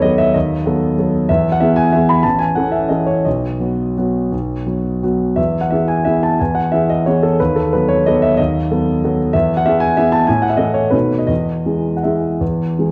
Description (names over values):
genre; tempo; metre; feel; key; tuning
classical, piano waltz; 156-199 BPM; 3/4; rubato; E major; A4 = 440 Hz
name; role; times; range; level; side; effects
warm concert grand piano; solo; 0.0-12.9 s; A1 to B5; -16 LUFS; equal; none
room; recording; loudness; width
moderate recital hall reverb, RT60 1.3 s; worn, warbling old tape, cassette tape, warbly pitch drift; -16 LUFS; mono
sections
0.0-12.9 A section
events
none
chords
0.0 B7/D#; 1.3 E; 2.2 A; 3.3 B; 5.4 E; 7.4 B7/D#; 9.3 E; 10.3 A5; 10.9 B7; 11.3 E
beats
0.03 | 0.35 0.66 0.97 | 1.29 1.60 1.92 | 2.24 2.56 2.90 | 3.25 3.60 3.97 | 4.32 4.67 5.03 | 5.38 5.71 6.06 | 6.39 6.72 7.05 | 7.39 7.72 8.06 | 8.38 8.71 9.03 | 9.34 9.65 9.96 | 10.28 10.59 10.94 | 11.30 11.66 12.04 | 12.41 12.78